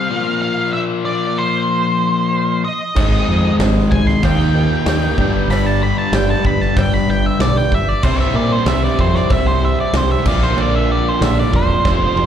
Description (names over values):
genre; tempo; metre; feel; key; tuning
classic rock; 94 BPM; 4/4; straight; unclear; A4 = 440 Hz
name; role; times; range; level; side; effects
octave-fuzz lead guitar; melody; 0.0-12.3 s; C5 to C6; -20 LUFS; right 1 dB; distortion, slapback echo
biting overdriven guitar; riff; 0.0-12.3 s; F2 to Eb4; -20 LUFS; left 8 dB; slapback echo
dark baby grand piano; accompaniment; 2.9-12.3 s; D4 to E5; -28 LUFS; equal; none
fingerpicked twelve-string acoustic guitar; accompaniment; 3.0-12.3 s; G2 to Bb4; -27 LUFS; right 4 dB; slapback echo
overdriven semi-hollow guitar; riff; 3.0-12.3 s; F2 to Ab4; -22 LUFS; right 10 dB; slapback echo
growling fingered electric bass; bass; 3.0-12.3 s; E1 to Bb2; -18 LUFS; equal; overdrive
big rock drum kit; drums; 3.0-12.3 s; crash cymbal, hi-hat, kick drum, snare drum, toms; -21 LUFS; equal; none
cowbell; percussion; 3.0-12.0 s; none; -30 LUFS; right 5 dB; slapback echo
room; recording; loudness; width
little or no reverb; live gig heard through the venue's PA, club reverb; -13 LUFS; side -9 dB against mid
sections
0.0-12.3 A section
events
drum fill 11.9-12.3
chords
0.1 Bb5; 3.0 Ab; 4.2 Eb; 5.2 G; 8.0 C; 10.3 Bb